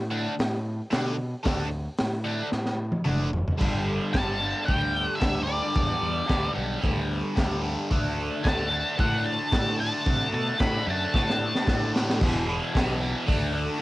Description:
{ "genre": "garage rock duo or trio", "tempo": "112 BPM", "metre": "4/4", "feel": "straight", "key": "unclear", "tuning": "A4 = 442 Hz", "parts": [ { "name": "growling fingered electric bass", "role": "bass", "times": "0.0-13.7 s", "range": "E1 to C3", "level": "-31 LUFS", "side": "equal", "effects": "overdrive" }, { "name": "cranked stack guitar", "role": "riff", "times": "0.1-13.8 s", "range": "E2 to D4", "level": "-29 LUFS", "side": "equal", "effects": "overdrive, phaser, cassette tape" }, { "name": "crunchy breakbeat drum kit", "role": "drums", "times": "0.4-13.4 s", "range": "crash cymbal, hi-hat, kick drum, snare drum, toms", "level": "-27 LUFS", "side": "equal", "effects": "cassette tape" }, { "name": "octave-fuzz lead guitar", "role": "melody", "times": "4.1-11.9 s", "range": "D5 to B5", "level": "-28 LUFS", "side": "left 1 dB", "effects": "distortion, cassette tape" } ], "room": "small room ambience", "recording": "home recording on cassette", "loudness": "-23 LUFS", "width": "side -18 dB against mid", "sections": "0.0-3.6 A section; 3.6-12.2 B section; 12.2-13.8 C section", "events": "drum fill 2.5-3.6, 11.1-12.2", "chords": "0.0 D5; 3.6 G5; 7.9 D5; 12.2 E5; 13.3 D5", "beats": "0.39 0.92 | 1.46 2.00 2.54 3.07 | 3.61 4.15 4.68 5.22 | 5.76 6.30 6.84 7.37 | 7.91 8.45 8.98 9.52 | 10.06 10.60 11.13 11.67 | 12.20 12.73 13.27 13.80" }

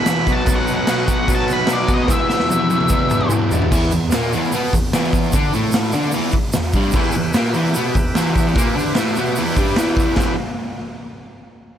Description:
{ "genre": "garage rock duo or trio", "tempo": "149 BPM", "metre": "4/4", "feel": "straight", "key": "E minor", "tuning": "A4 = 440 Hz", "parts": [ { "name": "octave-fuzz lead guitar", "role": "melody", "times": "0.0-3.3 s", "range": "D5 to B5", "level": "-21 LUFS", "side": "left 1 dB", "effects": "distortion" }, { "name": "overdriven combo organ", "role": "sustained chords", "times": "0.0-3.7, 7.0-10.4 s", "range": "F#4 to A5", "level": "-28 LUFS", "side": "right 1 dB", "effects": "none" }, { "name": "fuzz guitar", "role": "riff", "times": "0.0-10.3 s", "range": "E2 to D4", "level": "-19 LUFS", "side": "equal", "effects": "distortion" }, { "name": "raw garage drum kit", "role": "drums", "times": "0.1-10.3 s", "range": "crash cymbal, hi-hat, kick drum, snare drum, toms", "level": "-19 LUFS", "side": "equal", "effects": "none" }, { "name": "tube shaker", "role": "percussion", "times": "0.1-10.4 s", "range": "none", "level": "-32 LUFS", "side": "right 4 dB", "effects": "none" } ], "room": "light reverb", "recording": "none", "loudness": "-15 LUFS", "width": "side -10 dB against mid", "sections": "0.0-3.7 A section; 3.7-10.2 B section; 10.2-11.8 C section", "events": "drum fill 2.1-3.7; transistor combo organ fill 3.1-3.7", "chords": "0.3 B; 2.1 Em", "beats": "0.08 | 0.48 0.89 1.29 1.70 | 2.10 2.50 2.91 3.31 | 3.71 4.12 4.52 4.93 | 5.33 5.73 6.14 6.54 | 6.95 7.35 7.75 8.16 | 8.56 8.96 9.37 9.77 | 10.17" }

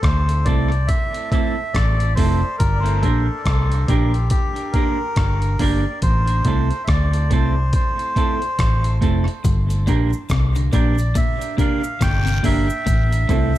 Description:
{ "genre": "dub reggae", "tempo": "70 BPM", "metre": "4/4", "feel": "swing 60% on 16ths", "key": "G dorian", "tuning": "A4 = 439 Hz", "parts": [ { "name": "melodica", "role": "melody", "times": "0.0-13.6 s", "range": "G4 to G5", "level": "-25 LUFS", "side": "equal", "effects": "tape echo" }, { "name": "vintage muted fingered electric bass", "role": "bass", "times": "0.0-13.5 s", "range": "F1 to D2", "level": "-19 LUFS", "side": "equal", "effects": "none" }, { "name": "breakbeat sampler-style drum kit", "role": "drums", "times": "0.0-13.5 s", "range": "hi-hat, kick drum, rim click", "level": "-21 LUFS", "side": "equal", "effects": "none" }, { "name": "clean electric guitar", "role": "accompaniment", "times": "0.5-13.5 s", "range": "A3 to Bb4", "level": "-25 LUFS", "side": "right 4 dB", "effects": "tape echo" }, { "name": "electric guitar at the edge of break-up", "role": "arpeggios", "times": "9.4-13.5 s", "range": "G2 to D3", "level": "-28 LUFS", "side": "left 6 dB", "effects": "tape echo" }, { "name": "cabasa and guiro", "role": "percussion", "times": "9.4-13.6 s", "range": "none", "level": "-39 LUFS", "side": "right 8 dB", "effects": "tape echo" } ], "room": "light reverb", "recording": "echo-heavy mix", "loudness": "-16 LUFS", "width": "side -14 dB against mid", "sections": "0.0-13.6 A section", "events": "break 0.0-9.4", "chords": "0.0 Am; 2.6 Gm; 6.0 Am; 9.4 Gm; 12.9 Am", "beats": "0.03 0.89 1.75 | 2.60 3.46 4.31 5.17 | 6.02 6.88 7.73 8.59 | 9.44 10.30 11.15 12.01 | 12.86" }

